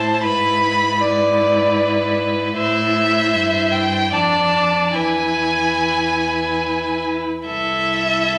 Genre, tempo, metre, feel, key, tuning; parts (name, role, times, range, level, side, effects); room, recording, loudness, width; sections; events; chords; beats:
classical, slow romantic movement for string quartet; 70-79 BPM; 3/4; rubato; A4 = 440 Hz
clear violin; melody; 0.0-8.4 s; D5 to B5; -20 LUFS; equal
clear violin; second line; 0.0-8.4 s; A4 to D5; -25 LUFS; equal
rich viola; accompaniment; 0.0-8.4 s; D4 to E4; -25 LUFS; equal
rich cello; bass; 0.0-8.4 s; C2 to A2; -29 LUFS; equal
wet recital hall reverb, RT60 1.4 s; -18 LUFS; mono
0.0-8.4 A section
0.2 E7/G#; 2.6 Am; 4.1 Dm/F; 5.0 E; 7.5 Am/C
| 0.23 1.01 1.78 | 2.57 3.33 4.13 | 4.96 5.81 6.65 | 7.47 8.28